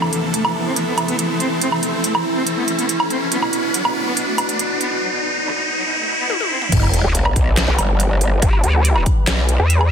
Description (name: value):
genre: heavy wobble dubstep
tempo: 141 BPM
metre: 4/4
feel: half-time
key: unclear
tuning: A4 = 440 Hz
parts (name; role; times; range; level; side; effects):
- dark cello; melody; 0.0-6.7 s; B2 to C4; -25 LUFS; left 1 dB; low-pass filter, digital delay
- supersaw chords; sustained chords; 0.0-9.9 s; E2 to B4; -27 LUFS; right 1 dB; sidechain pumping, low-pass filter
- dubstep drum kit; drums; 0.0-9.9 s; crash cymbal, handclaps, hi-hat, snare drum, toms, woodblock; -22 LUFS; right 1 dB; studio reverb
- riser and sub drop; sound effects; 0.0-8.4 s; none; -22 LUFS; equal; none
- deep dark ambient pad; texture; 0.0-5.0 s; E3 to C6; -25 LUFS; right 1 dB; chorus, built-in reverb, sidechain pumping
- growl bass; bass; 6.7-9.6 s; E1 to B1; -18 LUFS; equal; chorus, overdrive
- electronic kick drum; drums; 6.7-9.1 s; none; -17 LUFS; equal; studio reverb
- vowel-sweep wobble bass; bass; 7.0-9.9 s; E1 to E2; -15 LUFS; equal; chorus, overdrive
room: light reverb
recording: dense, heavily limited modern master, high-pass filter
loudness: -16 LUFS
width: side -8 dB against mid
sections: 0.0-6.7 A section; 6.7-9.9 B section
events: build-up 0.0-6.7; riser 0.0-6.7; filter sweep on cello 0.0-6.7; filter sweep 0.0-6.7; drum fill 6.3-6.7; drop 6.7-9.9; impact 6.7-8.4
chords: 0.0 Am/E; 3.3 Bm/E; 6.7 Em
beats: 0.34 0.77 1.19 | 1.62 2.04 2.47 2.89 | 3.32 3.74 4.17 4.59 | 5.02 5.45 5.87 6.30 | 6.72 7.15 7.57 8.00 | 8.42 8.85 9.28 9.70